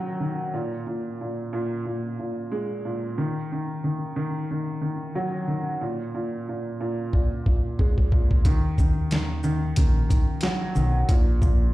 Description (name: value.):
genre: hip hop, boom-bap hip-hop.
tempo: 91 BPM.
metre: 4/4.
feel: swing 56% on 16ths.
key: Eb minor.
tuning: A4 = 439 Hz.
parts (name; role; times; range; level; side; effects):
warm upright piano; accompaniment; 0.0-11.7 s; Bb2 to Ab3; -27 LUFS; equal; cassette tape, high-pass filter, low-pass filter.
boom bap sampler-style drum kit; drums; 7.1-11.6 s; hi-hat, kick drum, shaker, snare drum; -21 LUFS; equal; none.
deep dub fingered electric bass; bass; 8.5-11.7 s; Bb1 to Eb2; -23 LUFS; equal; none.
room: light reverb.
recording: played on a big sound system in a bare room, large studio reverb.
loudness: -23 LUFS.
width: side -17 dB against mid.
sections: 0.0-8.5 A section; 8.5-11.7 B section.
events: drum fill 7.1-8.5.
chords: 0.0 Ebm; 0.5 Absus2/Bb; 3.2 Ebm; 5.8 Absus2/Bb; 8.5 Ebm; 11.1 Bb5.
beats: | 0.54 1.20 1.86 2.52 | 3.18 3.84 4.50 5.16 | 5.81 6.47 7.13 7.79 | 8.45 9.11 9.77 10.43 | 11.09.